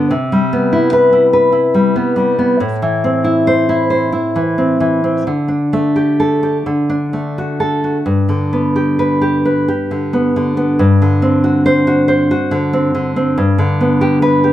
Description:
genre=romantic piece for solo classical guitar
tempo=43-50 BPM (dotted quarters)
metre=6/8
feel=rubato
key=G major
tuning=A4 = 440 Hz
part: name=nylon-string guitar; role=solo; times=0.0-14.5 s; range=G2 to C5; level=-12 LUFS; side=equal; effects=none
room=light reverb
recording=band playing live in one room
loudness=-12 LUFS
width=side -12 dB against mid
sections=0.0-14.5 A section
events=none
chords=0.1 Cmaj7; 2.6 Am; 5.3 Dsus4; 6.7 D; 8.1 G; 10.8 D7/G; 13.4 G

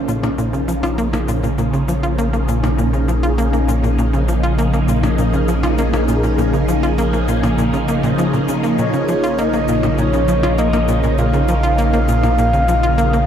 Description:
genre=ambient, sequencer-driven space music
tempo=100 BPM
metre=4/4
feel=straight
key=Bb minor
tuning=A4 = 440 Hz
part: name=phased string machine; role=sustained chords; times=0.0-13.3 s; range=Db3 to Ab4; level=-19 LUFS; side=equal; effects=ensemble chorus, phaser, shimmer reverb
part: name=round analog bass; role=bass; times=0.0-13.3 s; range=Bb1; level=-20 LUFS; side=equal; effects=none
part: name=pulsing gated texture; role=texture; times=0.0-13.3 s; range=Db4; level=-30 LUFS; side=right 4 dB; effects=none
part: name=tight sequencer bass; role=riff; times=0.1-13.2 s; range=Bb2 to F4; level=-20 LUFS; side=equal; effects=shimmer reverb, ping-pong delay
part: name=shaker and percussion blips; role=percussion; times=0.1-13.3 s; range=none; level=-29 LUFS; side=left 3 dB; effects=ping-pong delay
part: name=breathy flute-like synth lead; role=melody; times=8.8-13.3 s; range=Db5 to F5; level=-20 LUFS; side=equal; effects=lush chorus, shimmer reverb, ping-pong delay
room=moderate huge ambient reverb, RT60 7.3 s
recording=dark, warm production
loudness=-14 LUFS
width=side -9 dB against mid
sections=0.0-13.3 A section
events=none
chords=0.0 Bbm7

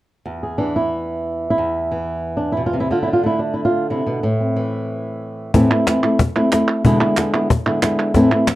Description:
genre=flamenco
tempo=free time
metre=none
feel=none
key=unclear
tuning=A4 = 440 Hz
part: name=flamenco guitar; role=melody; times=0.3-8.5 s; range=E2 to G#4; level=-17 LUFS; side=equal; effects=plate reverb
part: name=cajon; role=percussion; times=5.5-8.6 s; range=none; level=-18 LUFS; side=left 2 dB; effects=none
part: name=palmas hand claps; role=percussion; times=5.7-8.6 s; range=none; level=-23 LUFS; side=right 4 dB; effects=none
room=wet small room reverb, RT60 0.5 s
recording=dark, warm production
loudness=-16 LUFS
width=side -16 dB against mid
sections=0.3-5.5 A section; 5.5-8.6 B section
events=none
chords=0.3 N.C.; 2.9 D5; 4.2 Am; 6.8 E7

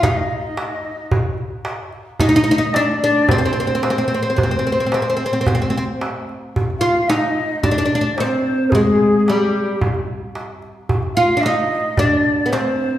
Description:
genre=Arabic maqam ensemble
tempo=110 BPM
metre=4/4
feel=straight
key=C minor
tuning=A4 = 440 Hz
part: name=oud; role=melody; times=0.0-13.0 s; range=G3 to F4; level=-18 LUFS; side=equal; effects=none
part: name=breathy ney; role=second line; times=0.0-13.0 s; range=G4 to F5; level=-21 LUFS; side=left 2 dB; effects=none
part: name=darbuka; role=percussion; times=0.0-12.6 s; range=none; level=-22 LUFS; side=right 1 dB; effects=none
room=wet recital hall reverb, RT60 1.4 s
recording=heard from further back in the room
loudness=-15 LUFS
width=side -12 dB against mid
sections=0.0-6.5 A section; 6.5-13.0 B section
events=none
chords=none

